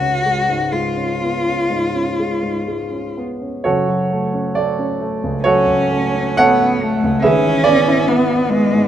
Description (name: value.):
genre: classical, romantic duo for cello and grand piano.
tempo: 59-72 BPM.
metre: 4/4.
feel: rubato.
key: F# minor.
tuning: A4 = 440 Hz.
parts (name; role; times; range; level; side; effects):
rich cello; melody; 0.0-8.9 s; G#3 to F#4; -18 LUFS; left 1 dB; none.
warm grand piano; accompaniment; 0.0-8.9 s; F#1 to F#5; -16 LUFS; right 2 dB; none.
room: moderate recital hall reverb, RT60 1.7 s.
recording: none.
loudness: -14 LUFS.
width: side -10 dB against mid.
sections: 0.0-3.6 A section; 3.6-8.9 B section.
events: none.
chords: 0.0 C#; 3.6 F#m; 7.2 E/G#.